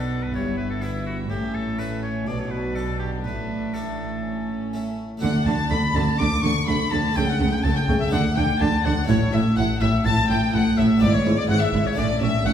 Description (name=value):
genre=classical, baroque-style concerto movement with solo episodes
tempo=124 BPM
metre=4/4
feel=straight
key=D major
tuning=A4 = 444 Hz
part: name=clear oboe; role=melody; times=0.0-12.5 s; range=E4 to D6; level=-30 LUFS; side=left 2 dB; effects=none
part: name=warm chamber violin section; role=melody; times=0.0-12.5 s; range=C#5 to D6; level=-32 LUFS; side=left 5 dB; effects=none
part: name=warm chamber violin section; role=second line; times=0.0-12.5 s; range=C#4 to D6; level=-30 LUFS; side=left 3 dB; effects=none
part: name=harpsichord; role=accompaniment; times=0.0-12.5 s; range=G2 to A4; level=-27 LUFS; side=equal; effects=none
part: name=rich studio viola section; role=accompaniment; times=0.0-12.5 s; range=F#3 to E4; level=-30 LUFS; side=right 1 dB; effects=none
part: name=rich chamber cello section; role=bass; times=0.0-12.5 s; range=G2 to D3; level=-26 LUFS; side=right 1 dB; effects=none
part: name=warm chamber double bass section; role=bass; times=0.0-12.5 s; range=G1 to D2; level=-26 LUFS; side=right 1 dB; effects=none
room=wet recital hall reverb, RT60 1.6 s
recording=heard from further back in the room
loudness=-20 LUFS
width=side -9 dB against mid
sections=0.0-5.2 A section; 5.2-12.5 B section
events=none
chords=0.3 Em/G; 1.3 A; 2.3 Bm; 3.2 Asus4; 4.2 A; 5.2 D; 7.2 A/C#; 8.1 D5; 9.1 A5; 11.0 E/G#; 12.0 A